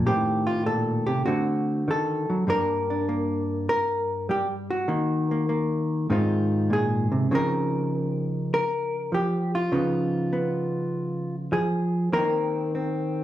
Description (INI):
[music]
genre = solo jazz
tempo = 99 BPM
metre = 4/4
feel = swing 68% on 8ths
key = unclear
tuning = A4 = 441 Hz
[part]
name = hollow-body jazz guitar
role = solo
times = 0.0-13.2 s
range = G2 to Bb4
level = -23 LUFS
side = equal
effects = none
[sound]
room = moderate club reverb, RT60 0.9 s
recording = studio reverb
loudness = -23 LUFS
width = side -13 dB against mid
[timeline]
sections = 0.0-2.5 A section; 2.5-13.2 B section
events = none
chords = 0.1 Am7b5; 1.3 D7b9; 2.5 Gm; 4.9 Ebm; 6.1 Ab69; 7.3 Dbmaj9; 9.7 Db9; 12.1 Eb5